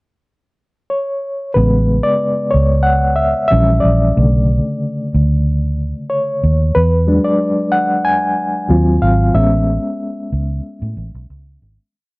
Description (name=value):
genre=lush 1970s-style soul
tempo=92 BPM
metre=4/4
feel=swing 54% on 16ths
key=A major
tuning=A4 = 440 Hz
part: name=bright reed electric piano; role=accompaniment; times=0.9-12.0 s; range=C#3 to G#5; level=-15 LUFS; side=left 1 dB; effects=fast tremolo, tube saturation
part: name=vintage muted fingered electric bass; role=bass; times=1.6-11.8 s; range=G#1 to A2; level=-14 LUFS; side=equal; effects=none
room=little or no reverb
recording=dry, close 1970s-style studio recording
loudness=-13 LUFS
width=side -25 dB against mid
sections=0.0-1.6 pickup bar; 1.6-11.9 A section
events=reed electric piano solo 1.6-11.9; fade-out 9.3-11.9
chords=0.0 N.C.; 1.6 Amaj7; 3.5 A#dim7; 4.2 Bm7; 6.8 E7; 8.7 D#m6; 9.3 Amaj7